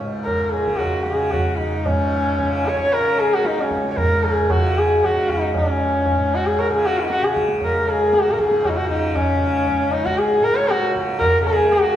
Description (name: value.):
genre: indian classical, Hindustani.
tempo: 115 BPM.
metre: 7/4.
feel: straight.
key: Db raga durga.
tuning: A4 = 442 Hz.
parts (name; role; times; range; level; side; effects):
tanpura; drone; 0.0-12.0 s; Db2 to Db3; -28 LUFS; right 1 dB; none.
tabla; percussion; 0.0-12.0 s; none; -25 LUFS; right 2 dB; none.
dark sarangi; melody; 0.2-12.0 s; Db4 to Db5; -18 LUFS; left 1 dB; none.
room: wet recital hall reverb, RT60 1.9 s.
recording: recorded in a church or concert hall.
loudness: -17 LUFS.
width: side -11 dB against mid.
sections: 0.0-1.9 A section; 1.9-12.0 B section.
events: speeding up 0.0-12.0.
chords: none.